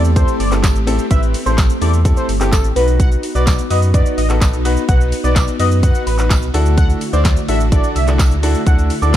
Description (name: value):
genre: dance-pop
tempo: 127 BPM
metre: 4/4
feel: straight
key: unclear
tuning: A4 = 440 Hz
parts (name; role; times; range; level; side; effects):
- octave-doubled lead; melody; 0.0-9.2 s; G4 to F#5; -23 LUFS; equal; chorus, phaser, sidechain pumping, ping-pong delay
- bright grand piano; accompaniment; 0.0-9.2 s; B3 to C5; -22 LUFS; left 2 dB; sidechain pumping
- string machine, violas; sustained chords; 0.0-9.2 s; D3 to G4; -23 LUFS; equal; ensemble chorus, sidechain pumping
- sub bass with octave; bass; 0.0-9.2 s; G1 to F#2; -16 LUFS; equal; sidechain pumping
- house drum kit; drums; 0.0-9.2 s; handclaps, hi-hat, kick drum, shaker, snare drum; -16 LUFS; equal; none
- tambourine; percussion; 0.6-9.2 s; none; -29 LUFS; right 13 dB; none
room: digital ambience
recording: dark, warm production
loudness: -12 LUFS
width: side -12 dB against mid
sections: 0.0-9.2 A section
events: none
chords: 0.0 Am7; 2.8 B; 6.5 Dadd9